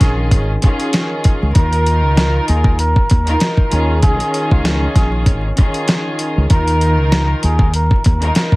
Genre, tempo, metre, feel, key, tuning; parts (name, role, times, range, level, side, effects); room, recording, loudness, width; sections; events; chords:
hip hop, boom-bap hip-hop; 97 BPM; 4/4; swing 55% on 16ths; A4 = 443 Hz
trumpet with cup mute; melody; 0.0-8.6 s; F4 to Bb4; -21 LUFS; right 1 dB; high-pass filter, low-pass filter
warm studio string section; accompaniment; 0.0-8.6 s; Eb3 to Bb4; -20 LUFS; equal; cassette tape, high-pass filter, low-pass filter
deep dub fingered electric bass; bass; 0.0-8.3 s; Ab1 to Eb2; -16 LUFS; equal
dusty soul sampler-style drum kit; drums; 0.0-8.6 s; hi-hat, kick drum, snare drum; -14 LUFS; equal
light reverb; heavily compressed radio sound, vinyl crackle; -12 LUFS; side -22 dB against mid
0.0-1.6 A section; 1.6-8.6 A section
0.0 Db; 1.6 Ebsus2; 3.7 Db; 6.5 Ebsus2